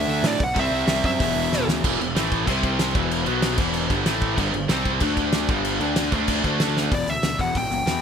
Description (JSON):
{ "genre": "punk rock", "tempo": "189 BPM", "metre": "4/4", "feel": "straight", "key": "E minor", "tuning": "A4 = 440 Hz", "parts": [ { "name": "high-gain lead guitar", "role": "melody", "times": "0.0-1.6, 6.9-8.0 s", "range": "D5 to G5", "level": "-25 LUFS", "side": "equal", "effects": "distortion, digital delay" }, { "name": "raw garage guitar", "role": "riff", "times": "0.0-8.0 s", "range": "E2 to D4", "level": "-26 LUFS", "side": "left 11 dB", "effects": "overdrive" }, { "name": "tight distorted guitar", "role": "riff", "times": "0.0-6.9 s", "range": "E2 to D4", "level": "-26 LUFS", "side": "right 18 dB", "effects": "distortion" }, { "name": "fuzz picked electric bass", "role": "bass", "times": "0.0-8.0 s", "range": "E1 to A2", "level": "-28 LUFS", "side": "equal", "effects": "overdrive" }, { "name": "loose indie drum kit", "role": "drums", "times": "0.2-7.9 s", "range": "crash cymbal, hi-hat, kick drum, snare drum", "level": "-24 LUFS", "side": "equal", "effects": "none" } ], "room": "little or no reverb", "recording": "none", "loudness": "-20 LUFS", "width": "side -7 dB against mid", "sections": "0.0-1.8 A section; 1.8-6.9 B section; 6.9-8.0 C section", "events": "drum fill 1.5-1.8, 6.8", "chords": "0.0 D; 0.6 C; 1.2 E5; 2.1 A5; 2.5 C5; 2.9 E5; 3.3 B5; 3.6 Em; 4.1 A5; 4.4 G5; 4.7 C5; 5.0 D5; 5.5 G5; 5.8 D5; 6.9 Em" }